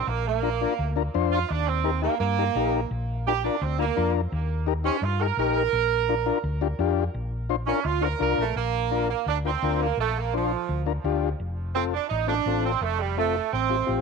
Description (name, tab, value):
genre	latin, cumbia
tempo	170 BPM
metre	4/4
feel	straight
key	Bb major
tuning	A4 = 441 Hz
part	bright saxophone section	melody	0.0-14.0 s	F3 to Bb4	-26 LUFS	right 12 dB	tape echo
part	hollow-body short-scale fingered electric bass	bass	0.1-14.0 s	F1 to G2	-28 LUFS	left 1 dB	none
part	overdriven combo organ	accompaniment	0.4-14.0 s	C4 to C5	-28 LUFS	left 16 dB	none
room	light reverb, studio reverb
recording	1960s-style stereo with parts hard left and right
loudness	-23 LUFS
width	side -5 dB against mid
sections	0.0-8.6 A section; 8.6-14.0 B section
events	saxophone section solo 0.0-8.6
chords	0.1 Bb; 1.5 Eb; 2.9 Bb; 4.3 Eb; 5.7 Bb; 11.4 F